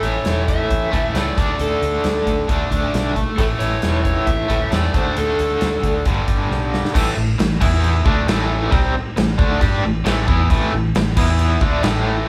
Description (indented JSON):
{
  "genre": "blues rock power trio and southern rock",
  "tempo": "135 BPM",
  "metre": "4/4",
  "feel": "straight",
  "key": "A mixolydian",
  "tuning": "A4 = 439 Hz",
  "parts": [
    { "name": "overdriven slide guitar", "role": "melody", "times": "0.0-6.0 s", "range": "A4 to E5", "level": "-25 LUFS", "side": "equal", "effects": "none" },
    { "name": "biting overdriven guitar", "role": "riff", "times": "0.0-12.3 s", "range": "G2 to G4", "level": "-23 LUFS", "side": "equal", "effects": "tremolo" },
    { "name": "vintage muted fingered electric bass", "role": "bass", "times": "0.0-12.2 s", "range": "E1 to G2", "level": "-24 LUFS", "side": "equal", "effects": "none" },
    { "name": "huge arena drum kit", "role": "drums", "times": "0.0-11.9 s", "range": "crash cymbal, hi-hat, kick drum, snare drum", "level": "-23 LUFS", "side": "equal", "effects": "none" }
  ],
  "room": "moderate large studio reverb, RT60 0.9 s",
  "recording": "band playing live in one room",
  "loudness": "-18 LUFS",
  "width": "mono",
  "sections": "0.0-6.9 A section; 6.9-12.3 B section",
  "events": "drum fill 6.5-6.9",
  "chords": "0.0 A; 1.4 D5; 3.4 A; 4.9 D5; 6.1 G; 6.9 A5; 7.6 E5; 8.1 A5; 11.2 E5; 11.6 A5"
}